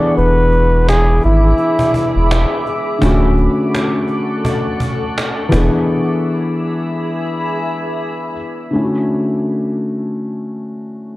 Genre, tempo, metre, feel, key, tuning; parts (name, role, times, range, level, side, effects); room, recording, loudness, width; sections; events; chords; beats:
lo-fi hip hop; 84 BPM; 4/4; swing 57% on 16ths; D lydian; A4 = 440 Hz
breathy flugelhorn; melody; 0.0-2.5 s; E4 to D5; -16 LUFS; equal; low-pass filter, tape echo
felt-muted upright piano; accompaniment; 0.0-11.2 s; D3 to G#4; -18 LUFS; left 1 dB; cassette tape, low-pass filter
granular cloud pad; sustained chords; 0.0-8.7 s; G#4 to D6; -23 LUFS; equal; built-in reverb, low-pass filter
sub bass with octave; bass; 0.2-5.7 s; D1 to G#1; -13 LUFS; equal
cajon; drums; 0.2-5.7 s; -22 LUFS; right 1 dB
light reverb; -14 LUFS; side -18 dB against mid
0.0-8.7 A section; 8.7-11.2 B section
break 5.9-8.7
0.0 E7; 3.0 Dmaj7; 5.5 E7; 8.7 Dmaj7
| 0.16 0.88 1.59 2.31 | 3.02 3.74 4.45 5.16 | 5.88 6.59 7.31 8.02 | 8.74 9.45 10.16 10.88